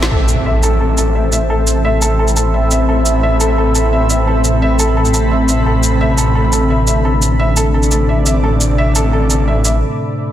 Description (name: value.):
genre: dark technical drum and bass.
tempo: 173 BPM.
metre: 4/4.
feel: straight.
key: A minor.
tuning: A4 = 439 Hz.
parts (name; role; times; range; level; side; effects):
snarling distorted saw bass; bass; 0.0-9.8 s; A1; -15 LUFS; equal; distortion, tube saturation.
drum and bass drum kit; drums; 0.0-9.7 s; hi-hat, shaker, snare drum; -18 LUFS; right 1 dB; none.
granular cloud pad; texture; 0.0-9.8 s; C4 to D6; -18 LUFS; equal; built-in reverb.
dark analog pad; sustained chords; 3.1-10.3 s; A3 to B4; -19 LUFS; equal; chorus, phaser.
felt-muted upright piano; arpeggios; 0.1-9.7 s; A4 to E5; -20 LUFS; equal; low-pass filter, tape echo.
impact; sound effects; 0.1-1.5 s; none; -18 LUFS; equal; none.
room: light reverb.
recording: dense, heavily limited modern master.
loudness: -11 LUFS.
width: side -11 dB against mid.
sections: 0.1-10.3 A section.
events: band accent 0.0; impact 0.1-1.5; filter sweep on analog synth pad 0.1-10.3; break 9.8-10.3.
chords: 0.1 Amadd9.